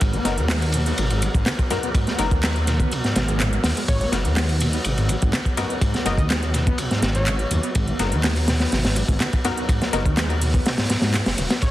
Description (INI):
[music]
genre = breakbeat, breaks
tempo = 124 BPM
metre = 4/4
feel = straight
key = G# minor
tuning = A4 = 439 Hz
[part]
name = tonewheel organ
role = sustained chords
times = 0.0-11.6 s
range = F#3 to A#4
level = -32 LUFS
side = right 1 dB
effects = overdrive, fast rotary speaker, vintage 12-bit sampler grit, sidechain pumping
[part]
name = overdriven acid bass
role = riff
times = 0.0-11.7 s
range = F#2 to B3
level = -28 LUFS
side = equal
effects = distortion, ensemble chorus, vintage 12-bit sampler grit, digital delay
[part]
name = dark detuned saw bass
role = bass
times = 0.0-11.7 s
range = D#1 to G#2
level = -23 LUFS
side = equal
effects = none
[part]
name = crunchy breakbeat drum kit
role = drums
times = 0.0-11.7 s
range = hi-hat, kick drum, ride cymbal, snare drum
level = -22 LUFS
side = equal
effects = none
[part]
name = house drum kit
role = drums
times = 0.0-11.7 s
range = handclaps, hi-hat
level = -30 LUFS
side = right 1 dB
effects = none
[part]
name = filtered dub chord stab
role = stabs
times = 0.3-10.0 s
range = B3 to A#4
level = -29 LUFS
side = left 4 dB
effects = chorus, digital delay
[part]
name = plucky unison lead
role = melody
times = 3.9-7.6, 11.6-11.7 s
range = C#5 to D#5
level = -32 LUFS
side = left 1 dB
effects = old record sound, digital delay
[sound]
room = little or no reverb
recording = dense, heavily limited modern master, vinyl crackle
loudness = -19 LUFS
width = side -15 dB against mid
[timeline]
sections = 0.0-11.6 A section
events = drop 0.0-11.6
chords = 0.0 G#m9